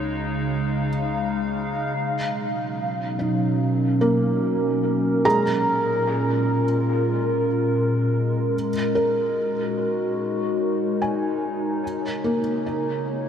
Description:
ambient; 73 BPM; 4/4; straight; B lydian; A4 = 439 Hz
warbly tape-like pad; sustained chords; 0.0-13.3 s; A#2 to E#5; -22 LUFS; equal; chorus, built-in reverb, phaser
felt-muted upright piano; arpeggios; 0.0-13.3 s; G#3 to A#5; -26 LUFS; equal; tape echo
warm sub bass; bass; 0.0-1.9 s; C#2; -39 LUFS; equal
analog drone; drone; 0.0-2.0 s; barely audible
wet huge ambient reverb, RT60 7.7 s; -21 LUFS; side -8 dB against mid
0.0-2.0 A section; 2.0-13.3 B section
filter sweep on ambient pad 2.0-13.3
0.0 C#; 2.0 Bmaj9; 5.2 A#m7; 8.5 G#9sus4; 11.8 C#

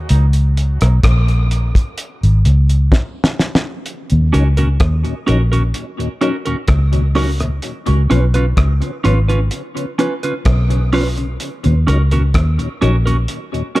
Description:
dub reggae; 64 BPM; 4/4; straight; Eb minor; A4 = 442 Hz
vintage muted fingered electric bass; bass; 0.0-13.3 s; Ab1 to Eb2; -13 LUFS; equal
cloth-damped thuddy drum kit; drums; 0.1-13.8 s; hi-hat, kick drum, rim click, snare drum; -18 LUFS; equal
mellow tonewheel organ; accompaniment; 4.1-13.8 s; Eb2 to Eb4; -24 LUFS; left 2 dB; chorus vibrato, slow rotary speaker, tape echo
semi-hollow electric guitar; accompaniment; 4.3-13.8 s; Db4 to Cb5; -21 LUFS; right 2 dB; tape echo
studio reverb; echo-heavy mix; -13 LUFS; side -18 dB against mid
0.0-3.9 A section; 3.9-13.8 B section
break 0.0-3.9; drum fill 2.9-3.9
0.1 Db5; 3.9 Ebm7; 7.6 Db7; 11.4 Ebm7

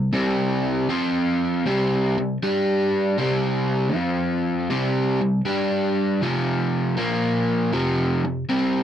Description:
rock; 79 BPM; 4/4; swing 68% on 8ths; A4 = 440 Hz
crunchy overdriven guitar; solo; 0.0-8.8 s; F2 to G4; -20 LUFS; equal
light reverb; dry, close 1970s-style studio recording; -20 LUFS; side -10 dB against mid
0.1-8.8 A section
0.1 C5; 0.9 F5; 1.6 C5; 2.4 G5; 3.2 C5; 3.9 F5; 4.7 C5; 5.4 G5; 6.2 F5; 7.0 Bb5; 7.7 F5

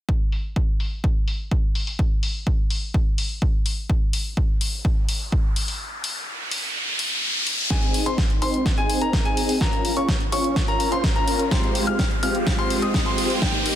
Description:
EDM, festival progressive house; 126 BPM; 4/4; straight; Ab major; A4 = 438 Hz
electronic kick drum; drums; 0.1-13.5 s; -22 LUFS; equal
big-room dance drum kit; drums; 0.3-13.8 s; hi-hat, snare drum; -27 LUFS; left 1 dB; low-pass filter on hats, low-pass filter on snare
riser; sound effects; 5.5-13.8 s; -28 LUFS; equal
bright baby grand piano; arpeggios; 7.7-13.7 s; G5 to F6; -27 LUFS; left 2 dB; sidechain pumping, low-pass filter, digital delay
big supersaw lead; riff; 7.7-13.7 s; Ab3 to F5; -24 LUFS; equal; sidechain pumping, low-pass filter, digital delay
wide detuned saw bass; bass; 7.7-13.8 s; Eb1 to F2; -38 LUFS; equal
digital ambience; dense, heavily limited modern master; -20 LUFS; side -12 dB against mid
0.1-7.7 A section; 7.7-13.8 B section
riser 5.5-7.7, 7.7-13.8; break 5.8-7.7; build-up 7.7-13.8; drum fill 7.7-13.8; filter sweep on supersaw synth 7.7-13.8
0.1 N.C.; 7.7 Ab; 9.6 Bbm; 11.5 Fmadd9

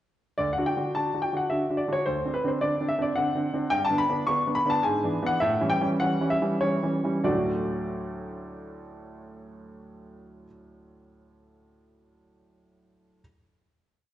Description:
classical-period piano sonatina; 94-111 BPM; 3/4; straight; D major; A4 = 440 Hz
clear baby grand piano; solo; 0.4-13.2 s; D2 to C#6; -24 LUFS; equal
wet recital hall reverb, RT60 1.6 s; worn, warbling old tape, cassette tape, warbly pitch drift, nothing above 10.4 kHz; -24 LUFS; side -12 dB against mid
0.4-7.2 theme; 7.2-11.0 final chord
slowing down 2.9-7.2
0.4 D; 2.1 D7; 3.7 G; 4.8 E7/G#; 5.4 A7 (rootless); 7.2 D

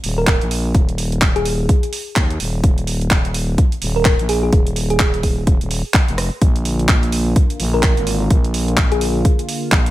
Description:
bass house; 127 BPM; 4/4; swing 60% on 16ths; A4 = 439 Hz
growling FM bass; bass; 0.0-9.9 s; Eb1 to Eb2; -20 LUFS; equal; overdrive, sidechain pumping
house drum kit; drums; 0.0-9.9 s; handclaps, hi-hat, rim click; -22 LUFS; right 1 dB
thumb-piano-like synth pluck; melody; 0.2-9.4 s; Ab4 to Bb4; -23 LUFS; equal; chorus, digital delay
electronic kick drum; drums; 0.3-9.8 s; -15 LUFS; equal
sweeping resonant pad; sustained chords; 6.4-9.9 s; D3 to F4; -26 LUFS; right 1 dB; chorus, sidechain pumping
digital ambience; -14 LUFS; side -15 dB against mid
0.0-9.9 A section
0.0 Eb5; 6.4 Bb

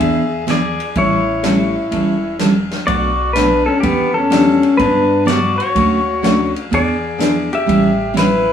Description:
country, western swing; 125 BPM; 4/4; swing 67% on 8ths; A4 = 443 Hz
pedal steel guitar; melody; 0.0-8.5 s; B3 to E5; -15 LUFS; left 2 dB
picked steel-string acoustic guitar; accompaniment; 0.0-8.3 s; B2 to A4; -18 LUFS; right 2 dB
upright bass; bass; 0.0-8.5 s; E1 to G2; -25 LUFS; left 1 dB
vintage drum kit; drums; 0.0-8.3 s; hi-hat, kick drum, ride cymbal, snare drum; -24 LUFS; left 1 dB
tack piano; accompaniment; 1.4-7.5 s; G3 to G#4; -20 LUFS; left 4 dB
wet small room reverb, RT60 0.6 s; band playing live in one room, small room ambience; -13 LUFS; side -8 dB against mid
0.0-8.5 A section
0.0 E7; 1.0 A7; 2.9 Bm7; 3.8 Em7; 4.8 Gmaj7; 5.8 Dmaj7; 6.7 E7; 7.7 A7

